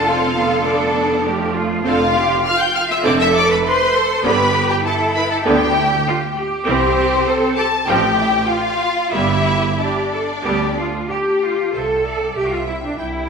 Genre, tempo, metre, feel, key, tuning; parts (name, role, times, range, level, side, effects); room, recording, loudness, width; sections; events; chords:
quick classical-period movement for string orchestra; 91-102 BPM; 4/4; rubato; C major; A4 = 440 Hz
warm symphonic violin section; melody; 0.0-13.3 s; C5 to G6; -21 LUFS; left 3 dB
clear symphonic violin section; second line; 0.0-13.1 s; C4 to G5; -20 LUFS; equal
clear symphonic viola section; accompaniment; 0.0-13.3 s; D3 to A4; -21 LUFS; right 2 dB
clear symphonic double bass section; bass; 0.0-13.3 s; F1 to D2; -24 LUFS; right 4 dB
rich symphonic cello section; bass; 0.0-13.3 s; D4 to B4; -21 LUFS; right 1 dB
wet scoring stage reverb, RT60 1.9 s; minimal, uncompressed stereo recording; -15 LUFS; side -5 dB against mid
0.0-11.7 A section; 11.7-13.3 B section
0.0 Dm7/F; 4.2 G; 6.7 C; 7.9 F/A; 9.1 G; 11.7 C